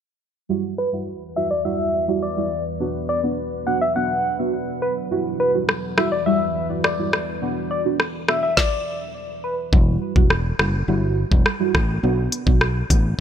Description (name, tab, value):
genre	dancehall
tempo	104 BPM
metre	4/4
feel	straight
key	E minor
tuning	A4 = 441 Hz
part	deep mellow chord stab	accompaniment	0.5-13.1 s	G3 to F#4	-25 LUFS	right 3 dB	chorus, phaser, sidechain pumping, low-pass filter
part	deep dark ambient pad	sustained chords	1.1-8.6 s	E2 to F#5	-30 LUFS	equal	chorus, built-in reverb, sidechain pumping, low-pass filter
part	soft struck synth lead	melody	0.8-9.6 s	B4 to F#5	-24 LUFS	left 1 dB	chorus, low-pass filter, digital delay
part	island pop drum kit	drums	5.7-13.0 s	hi-hat, kick drum, rim click, snare drum	-20 LUFS	equal	none
part	fingered electric bass	bass	9.7-13.1 s	E1 to B1	-21 LUFS	equal	none
room	light reverb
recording	bright 1980s-style digital production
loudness	-19 LUFS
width	side -9 dB against mid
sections	0.5-9.7 A section; 9.7-13.2 B section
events	filter sweep 0.5-9.7; stop 8.6-9.7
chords	0.5 Emadd9; 2.8 Bm; 5.1 Emadd9; 7.4 Bm; 9.7 Emadd9; 12.0 Bm